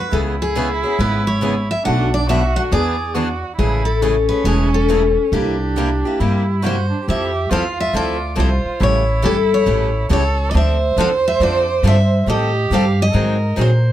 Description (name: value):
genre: acoustic string swing (jazz manouche)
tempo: 138 BPM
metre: 4/4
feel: swing 65% on 8ths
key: F major from 7.1 s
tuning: A4 = 440 Hz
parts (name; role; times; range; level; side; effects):
- picked steel-string acoustic guitar; melody; 0.0-13.9 s; G4 to F#5; -21 LUFS; left 3 dB; none
- dark violin; second line; 0.0-13.9 s; C#4 to D5; -22 LUFS; right 4 dB; none
- picked steel-string acoustic guitar; accompaniment; 0.1-13.7 s; B2 to A4; -23 LUFS; left 3 dB; none
- picked steel-string acoustic guitar; accompaniment; 0.1-13.7 s; B2 to B4; -28 LUFS; right 6 dB; none
- upright bass; bass; 0.1-13.9 s; E1 to Bb2; -18 LUFS; equal; none
room: light reverb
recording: none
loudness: -15 LUFS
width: side -12 dB against mid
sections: 0.0-7.1 A section; 7.1-13.9 B section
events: none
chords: 0.1 C#m7; 1.9 Bm7; 2.7 E9; 3.6 Amaj7; 5.3 C7; 7.1 Fmaj7; 8.8 A7; 10.5 Dm7; 12.3 Am7b5; 13.1 Ab9